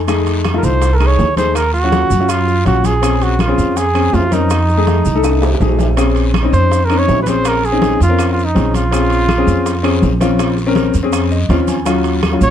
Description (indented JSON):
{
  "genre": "Afro-Cuban jazz",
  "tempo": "163 BPM",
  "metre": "4/4",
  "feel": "straight",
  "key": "Bb minor",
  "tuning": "A4 = 440 Hz",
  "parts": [
    { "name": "clear grand piano", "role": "accompaniment", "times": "0.0-12.5 s", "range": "Gb3 to Ab5", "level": "-17 LUFS", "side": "left 4 dB", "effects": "none" },
    { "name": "upright bass", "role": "bass", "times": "0.0-12.5 s", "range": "Bb1 to Gb2", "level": "-16 LUFS", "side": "right 1 dB", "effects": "none" },
    { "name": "bongos", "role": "percussion", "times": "0.1-12.5 s", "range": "none", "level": "-27 LUFS", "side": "left 4 dB", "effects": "none" },
    { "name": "claves", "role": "percussion", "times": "0.1-12.4 s", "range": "none", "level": "-32 LUFS", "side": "right 6 dB", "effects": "none" },
    { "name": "congas", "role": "percussion", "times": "0.1-12.5 s", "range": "none", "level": "-23 LUFS", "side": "left 1 dB", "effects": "none" },
    { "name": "guiro", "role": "percussion", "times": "0.1-12.5 s", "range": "none", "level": "-34 LUFS", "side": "left 5 dB", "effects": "none" },
    { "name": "maracas", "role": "percussion", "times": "0.1-12.5 s", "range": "none", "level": "-34 LUFS", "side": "right 9 dB", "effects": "none" },
    { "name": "timbales", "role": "percussion", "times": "0.1-12.4 s", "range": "none", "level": "-26 LUFS", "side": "right 5 dB", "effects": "none" },
    { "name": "mellow trumpet", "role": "melody", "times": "0.6-10.2, 12.4-12.5 s", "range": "Eb4 to Db5", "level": "-17 LUFS", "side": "right 2 dB", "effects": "none" }
  ],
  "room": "light reverb",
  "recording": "dark, warm production",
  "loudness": "-11 LUFS",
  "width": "side -10 dB against mid",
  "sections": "0.0-6.0 A section; 6.0-12.5 A section",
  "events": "drum fill 5.2-6.0; grand piano fill 11.1-11.9",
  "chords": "0.0 F7#9; 1.6 Ebm9; 3.0 Bbm9; 4.5 F7#9; 6.0 Bbm9; 11.9 Ebm9"
}